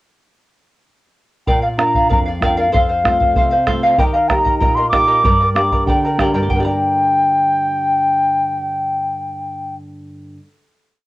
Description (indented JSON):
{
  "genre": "andean folk, Andean ensemble",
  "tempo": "96 BPM",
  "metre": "2/4",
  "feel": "straight",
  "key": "G minor",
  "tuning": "A4 = 439 Hz",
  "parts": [
    { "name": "mellow large quena", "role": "melody", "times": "1.5-9.7 s", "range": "F5 to D6", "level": "-16 LUFS", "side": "left 1 dB", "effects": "cassette tape" },
    { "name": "charango", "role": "accompaniment", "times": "1.5-10.6 s", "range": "G4 to Bb5", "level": "-20 LUFS", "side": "equal", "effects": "cassette tape" },
    { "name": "nylon-string guitar", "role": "accompaniment", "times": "1.5-10.5 s", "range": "F2 to D5", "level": "-22 LUFS", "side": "equal", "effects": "cassette tape" },
    { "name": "bombo", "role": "percussion", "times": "1.5-6.8 s", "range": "none", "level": "-19 LUFS", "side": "right 1 dB", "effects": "none" }
  ],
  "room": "wet small room ambience, RT60 0.5 s",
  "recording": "home recording on cassette",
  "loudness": "-13 LUFS",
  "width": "side -17 dB against mid",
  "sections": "1.5-6.5 A section; 6.5-9.0 final chord",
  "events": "none",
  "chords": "1.5 Bb; 2.7 F; 4.0 Eb; 5.2 Gm"
}